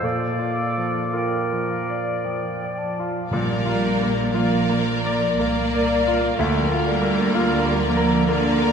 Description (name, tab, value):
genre	classical, romantic movement for piano and orchestra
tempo	54-63 BPM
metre	3/4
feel	rubato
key	Bb major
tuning	A4 = 440 Hz
part	clear baby grand piano	melody	0.0-8.7 s	D2 to D5	-23 LUFS	left 1 dB	none
part	clear oboe	second line	0.0-3.0 s	D5	-30 LUFS	left 2 dB	none
part	mellow clarinet	second line	0.0-2.8 s	A4 to Bb4	-29 LUFS	right 2 dB	none
part	mellow hollow silver concert flute	second line	0.0-3.3 s	F5 to A5	-34 LUFS	right 1 dB	none
part	warm studio cello section	bass	2.8-8.7 s	D3 to Bb3	-25 LUFS	right 3 dB	none
part	clear studio violin section	melody	3.3-8.7 s	D5	-28 LUFS	left 5 dB	none
part	warm studio violin section	second line	3.3-8.7 s	Bb4	-29 LUFS	equal	none
part	rich studio viola section	accompaniment	3.3-8.7 s	Bb3	-26 LUFS	right 1 dB	none
part	warm studio double bass section	bass	3.3-8.7 s	Bb1 to D2	-29 LUFS	right 3 dB	none
part	timpani	percussion	3.3-4.8 s	Bb2	-32 LUFS	right 1 dB	none
room	wet concert hall reverb, RT60 2.0 s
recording	none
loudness	-19 LUFS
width	side -6 dB against mid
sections	0.0-3.3 A section; 3.3-8.7 A section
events	none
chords	0.0 Bb; 6.4 Bb/D